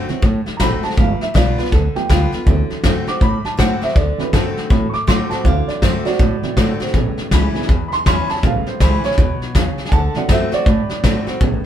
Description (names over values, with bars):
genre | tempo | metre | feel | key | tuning
rockabilly | 161 BPM | 4/4 | swing 62% on 8ths | D mixolydian | A4 = 440 Hz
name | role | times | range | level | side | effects
picked steel-string acoustic guitar | accompaniment | 0.0-11.7 s | E2 to F#4 | -24 LUFS | left 3 dB | none
warm upright piano | accompaniment | 0.1-11.7 s | C#3 to D6 | -22 LUFS | right 4 dB | none
upright bass | bass | 0.1-11.6 s | G1 to A2 | -19 LUFS | equal | none
soft brush drum kit | drums | 0.1-11.5 s | hi-hat, kick drum, snare drum | -18 LUFS | equal | none
room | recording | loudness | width
light reverb | band playing live in one room | -14 LUFS | side -10 dB against mid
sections
0.0-11.7 A section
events
upright piano solo 0.0-11.7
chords
0.0 D7; 1.0 G7; 2.5 D7; 6.9 A7; 9.9 D7